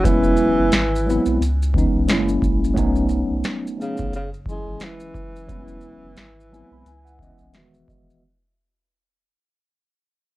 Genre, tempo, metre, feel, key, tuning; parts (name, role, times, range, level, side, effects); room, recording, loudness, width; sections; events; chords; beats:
lo-fi hip hop; 88 BPM; 4/4; swing 58% on 16ths; E major; A4 = 441 Hz
breathy tenor saxophone; melody; 0.0-7.6 s; C#3 to G#3; -24 LUFS; right 1 dB; plate reverb
mellow tine electric piano; accompaniment; 0.0-8.2 s; D#3 to B5; -22 LUFS; equal; medium stereo tremolo
warm sub bass; bass; 0.0-8.2 s; D#1 to C#2; -24 LUFS; equal; tube saturation
booming analog drum machine; drums; 0.0-8.2 s; hi-hat, kick drum, shaker, snare drum; -23 LUFS; equal
moderate studio ambience, RT60 0.5 s; worn, warbling old tape, cassette tape, warbly pitch drift; -17 LUFS; side -17 dB against mid
0.0-8.2 A section
fade-out 0.0-8.2
0.0 E69; 0.7 G#7alt; 1.4 C#m9; 2.1 F#7; 2.8 B7; 4.1 F#sus2; 5.5 E69; 6.2 G#7alt; 6.9 C#m9; 7.5 Emaj9
| 0.04 0.72 1.40 2.08 | 2.77 3.45 4.13 4.81 | 5.49 6.18 6.86 7.54